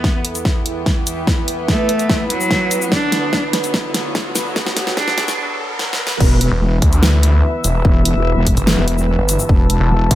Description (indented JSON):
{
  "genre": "heavy wobble dubstep",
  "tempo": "146 BPM",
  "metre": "4/4",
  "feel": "half-time",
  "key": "E minor",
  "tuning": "A4 = 440 Hz",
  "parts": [
    { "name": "clear cello", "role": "melody", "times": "0.0-5.4 s", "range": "F#3 to D4", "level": "-21 LUFS", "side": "equal", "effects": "tape echo" },
    { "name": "rich studio string section", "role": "sustained chords", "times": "0.0-10.2 s", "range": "D2 to A5", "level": "-24 LUFS", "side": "left 1 dB", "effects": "sidechain pumping, low-pass filter" },
    { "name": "big-room dance drum kit", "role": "drums", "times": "0.0-10.2 s", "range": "crash cymbal, hi-hat, shaker, snare drum", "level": "-19 LUFS", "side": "equal", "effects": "small room ambience" },
    { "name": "electronic kick drum", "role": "drums", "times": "0.0-10.2 s", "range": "none", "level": "-16 LUFS", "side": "equal", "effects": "small room ambience" },
    { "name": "riser", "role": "sound effects", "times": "0.0-6.2 s", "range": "none", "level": "-30 LUFS", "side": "right 1 dB", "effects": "none" },
    { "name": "ethereal airy pad", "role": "texture", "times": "0.0-10.2 s", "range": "D3 to E6", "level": "-27 LUFS", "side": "right 3 dB", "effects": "ensemble chorus, built-in reverb, phaser, sidechain pumping" },
    { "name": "wobble bass", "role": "bass", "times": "6.2-10.1 s", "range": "E1", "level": "-15 LUFS", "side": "equal", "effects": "chorus, overdrive" },
    { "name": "snarling distorted saw bass", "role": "bass", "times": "6.5-10.2 s", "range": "E1 to D2", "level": "-15 LUFS", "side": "equal", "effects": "distortion, overdrive" }
  ],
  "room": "light reverb",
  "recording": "high-pass filter",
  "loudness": "-14 LUFS",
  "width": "side -14 dB against mid",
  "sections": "0.0-6.2 A section; 6.2-10.2 B section",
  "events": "build-up 0.0-6.2; drum fill 0.0-5.4, 5.8-6.2; riser 0.0-6.2; filter sweep 0.0-6.2; break 5.4-6.2; drop 6.2-10.2",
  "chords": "0.0 Em; 2.9 Bm/D; 6.2 E5",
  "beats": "0.04 0.45 0.86 | 1.27 1.69 2.10 2.51 | 2.92 3.33 3.74 4.15 | 4.56 4.97 5.38 5.79 | 6.21 6.62 7.03 7.44 | 7.85 8.26 8.67 9.08 | 9.49 9.90"
}